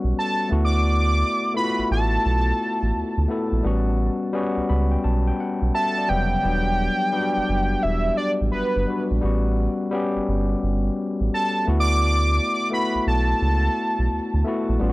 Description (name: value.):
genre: R&B, neo-soul.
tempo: 86 BPM.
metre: 4/4.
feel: swing 64% on 16ths.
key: unclear.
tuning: A4 = 440 Hz.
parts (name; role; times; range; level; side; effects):
overdriven tine electric piano; accompaniment; 0.0-14.9 s; C#3 to B5; -24 LUFS; left 2 dB; none.
round analog bass; bass; 0.0-14.9 s; E1 to D2; -22 LUFS; equal; none.
fat analog lead; melody; 0.2-14.4 s; B4 to D6; -24 LUFS; right 1 dB; none.
room: little or no reverb.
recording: dry, close 1970s-style studio recording.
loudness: -20 LUFS.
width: side -20 dB against mid.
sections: 0.0-6.4 A section; 6.4-14.9 A section.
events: tine electric piano fill 4.3-6.4.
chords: 0.5 D6; 3.6 A13; 6.4 Em7; 9.2 A13; 11.7 D6.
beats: 0.15 | 0.85 1.55 2.24 2.94 | 3.64 4.34 5.03 5.73 | 6.43 7.13 7.83 8.52 | 9.22 9.92 10.62 11.31 | 12.01 12.71 13.41 14.10 | 14.80.